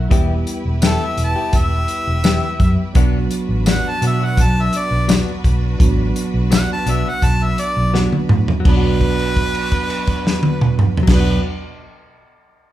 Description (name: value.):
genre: straight-eighth soul blues.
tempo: 84 BPM.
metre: 4/4.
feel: straight.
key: B minor.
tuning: A4 = 437 Hz.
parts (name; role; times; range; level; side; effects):
bright harmonica; melody; 0.0-11.4 s; A4 to A5; -22 LUFS; equal; overdrive.
tine electric piano; accompaniment; 0.0-11.4 s; F#3 to G4; -25 LUFS; right 4 dB; none.
clear symphonic string section; sustained chords; 0.0-11.4 s; D4 to B4; -32 LUFS; left 1 dB; none.
vintage muted fingered electric bass; bass; 0.0-11.4 s; E1 to B2; -19 LUFS; equal; none.
direct-recorded clean electric guitar; stabs; 0.1-11.5 s; E3 to G4; -27 LUFS; left 4 dB; none.
warm soul drum kit; drums; 0.1-11.2 s; crash cymbal, hi-hat, kick drum, snare drum, tambourine, toms; -17 LUFS; equal; none.
room: moderate large studio reverb, RT60 1.4 s.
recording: band playing live in one room.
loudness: -14 LUFS.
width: side -13 dB against mid.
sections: 0.0-8.6 A section; 8.6-11.5 B section.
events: harmonica solo 0.0-8.6; drum fill 7.9-8.6; held note 8.6-11.1.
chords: 0.1 Em; 3.0 Bm.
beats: | 0.11 0.82 1.53 2.24 | 2.96 3.67 4.38 5.09 | 5.80 6.51 7.22 7.94 | 8.65 9.36 10.07 10.79.